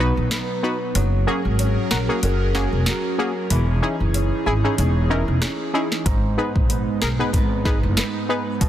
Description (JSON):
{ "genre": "dancehall", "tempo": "94 BPM", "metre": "4/4", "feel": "swing 56% on 16ths", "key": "G# minor", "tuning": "A4 = 441 Hz", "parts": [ { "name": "synth brass stab", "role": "accompaniment", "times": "0.0-8.4 s", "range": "A#3 to B4", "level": "-25 LUFS", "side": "left 1 dB", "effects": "chorus" }, { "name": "airy breathy pad", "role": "sustained chords", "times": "0.0-8.7 s", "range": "E3 to A#4", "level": "-28 LUFS", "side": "right 2 dB", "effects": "chorus" }, { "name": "nylon-string guitar", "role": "arpeggios", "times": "0.0-8.7 s", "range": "G#2 to B4", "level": "-28 LUFS", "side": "equal", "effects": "none" }, { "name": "upright bass", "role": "bass", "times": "0.0-8.7 s", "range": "E1 to B1", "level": "-21 LUFS", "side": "equal", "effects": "none" }, { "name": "downlifter", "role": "sound effects", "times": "0.0-1.0 s", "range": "none", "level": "barely audible", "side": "none", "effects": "none" }, { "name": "afro-pop drum kit", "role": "drums", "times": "0.3-8.7 s", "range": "hi-hat, kick drum, rim click, snare drum", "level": "-23 LUFS", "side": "equal", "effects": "none" } ], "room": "light reverb", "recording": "dense, heavily limited modern master", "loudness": "-18 LUFS", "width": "side -11 dB against mid", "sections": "0.0-8.7 A section", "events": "break 0.0-6.1", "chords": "0.0 B; 1.0 F#add9; 3.5 C#madd9/E; 6.1 G#m" }